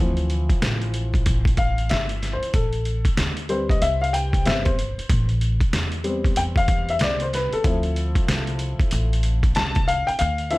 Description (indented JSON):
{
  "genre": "hip hop, jazz-hop",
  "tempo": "94 BPM",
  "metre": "4/4",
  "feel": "swing 61% on 16ths",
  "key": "A minor",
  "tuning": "A4 = 444 Hz",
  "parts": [
    { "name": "dark upright piano", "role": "accompaniment", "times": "0.0-10.6 s", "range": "E3 to A5", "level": "-25 LUFS", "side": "left 2 dB", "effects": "none" },
    { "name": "upright bass", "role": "bass", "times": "0.0-10.6 s", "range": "G1 to E2", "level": "-24 LUFS", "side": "equal", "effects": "none" },
    { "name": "trip hop sampler-style drum kit", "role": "drums", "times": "0.2-10.6 s", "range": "hi-hat, kick drum, snare drum", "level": "-22 LUFS", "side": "equal", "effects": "none" }
  ],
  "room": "little or no reverb",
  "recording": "vinyl crackle",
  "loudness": "-19 LUFS",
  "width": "side -20 dB against mid",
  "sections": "0.0-10.6 A section",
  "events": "upright piano solo 0.0-10.6; kick muted 10.2-10.6",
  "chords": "0.0 Dm9; 2.5 Am9; 7.6 Dm9"
}